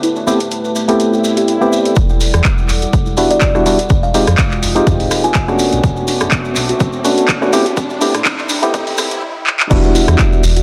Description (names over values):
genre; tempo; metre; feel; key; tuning
deep house; 124 BPM; 4/4; swing 54% on 16ths; E minor; A4 = 442 Hz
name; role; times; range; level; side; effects
dark analog pad; sustained chords; 0.0-10.6 s; G3 to Eb6; -28 LUFS; equal; chorus, sidechain pumping
soft round pluck; arpeggios; 0.0-10.6 s; C4 to B4; -26 LUFS; equal; none
punchy analog drum machine; drums; 0.0-10.6 s; crash cymbal, handclaps, hi-hat, rim click; -21 LUFS; equal; high-pass filter on hats, high-pass filter on snare, high-pass filter on cymbals
maracas; percussion; 0.0-10.6 s; none; -28 LUFS; equal; none
warbly tape-like pad; texture; 0.0-9.2 s; B3 to A5; -28 LUFS; equal; none
percussive organ stab; stabs; 0.3-10.4 s; G3 to G4; -18 LUFS; equal; chorus, sidechain pumping, tape echo
swell and riser; sound effects; 1.2-9.2 s; none; -28 LUFS; equal; none
sub bass with octave; bass; 2.0-10.6 s; E1 to A2; -19 LUFS; equal; tube saturation
electronic kick drum; drums; 2.0-10.3 s; none; -18 LUFS; equal; none
kalimba; melody; 3.3-5.4 s; D5 to Ab5; -23 LUFS; equal; tape echo
room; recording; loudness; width
moderate plate reverb, RT60 2.0 s; dense, heavily limited modern master, high-pass filter; -14 LUFS; mono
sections
0.0-2.0 A section; 2.0-9.7 B section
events
swell 1.2-2.0; build-up 2.0-9.7; filter sweep on synth stab 2.0-9.7; filter sweep 2.0-9.7; drum fill 9.5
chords
0.0 Am9; 2.0 Em9; 3.9 Fm9; 5.6 Bm9; 7.5 Am9; 9.7 Em9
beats
| 0.03 0.51 1.00 1.48 | 1.97 2.45 2.93 3.42 | 3.90 4.38 4.87 5.35 | 5.84 6.32 6.80 7.29 | 7.77 8.26 8.74 9.22 | 9.71 10.19